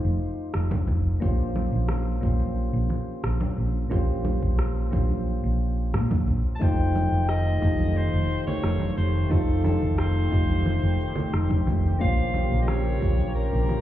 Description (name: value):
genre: sunset chillout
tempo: 89 BPM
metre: 4/4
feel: straight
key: Bb dorian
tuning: A4 = 441 Hz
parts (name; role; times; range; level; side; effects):
- soft electric-piano-like synth keys; accompaniment; 0.0-13.8 s; A3 to Db5; -31 LUFS; left 1 dB; chorus, auto-pan, ping-pong delay
- hollow-body short-scale fingered electric bass; bass; 0.0-13.7 s; F1 to Bb2; -24 LUFS; equal; none
- electronic rim click, congas and cabasa; drums; 0.5-13.8 s; none; -34 LUFS; right 1 dB; none
- electronic kick drum; drums; 0.7-13.2 s; none; -25 LUFS; equal; none
- congas; percussion; 0.7-13.3 s; none; -34 LUFS; right 3 dB; none
- bright soprano saxophone; melody; 6.6-13.8 s; A4 to A5; -32 LUFS; left 2 dB; ping-pong delay
- lush unison pad; sustained chords; 7.1-13.8 s; Db3 to Bb4; -32 LUFS; left 1 dB; chorus, phaser
room: light reverb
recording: heard muffled through a wall, club reverb, EQ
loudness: -22 LUFS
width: side -13 dB against mid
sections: 0.0-13.8 A section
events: none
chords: 0.0 F9; 1.2 Bbm69; 6.6 F9; 12.0 Bbm69